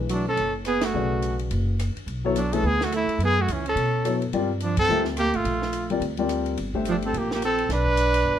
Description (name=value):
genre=modal jazz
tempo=213 BPM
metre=4/4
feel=swing 60% on 8ths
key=unclear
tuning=A4 = 438 Hz
part: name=warm baby grand piano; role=accompaniment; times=0.0-7.1 s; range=C#3 to E5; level=-27 LUFS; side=left 5 dB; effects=none
part: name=upright bass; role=bass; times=0.0-8.4 s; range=F#1 to B2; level=-27 LUFS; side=equal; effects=none
part: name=warm trumpet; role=melody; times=0.1-8.4 s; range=C#4 to B4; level=-25 LUFS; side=equal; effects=none
part: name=breathy alto saxophone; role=second line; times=0.1-8.4 s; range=E3 to D4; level=-28 LUFS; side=right 5 dB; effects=none
part: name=compact cocktail drum kit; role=drums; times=0.1-8.2 s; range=hi-hat, kick drum, ride cymbal, rim click, snare drum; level=-35 LUFS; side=equal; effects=none
room=moderate studio reverb, RT60 1.0 s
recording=minimal, uncompressed stereo recording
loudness=-22 LUFS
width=side -10 dB against mid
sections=0.0-8.4 A section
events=band accent 0.8, 4.7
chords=0.0 Bm11; 4.3 Gm11; 7.7 Bm(b13)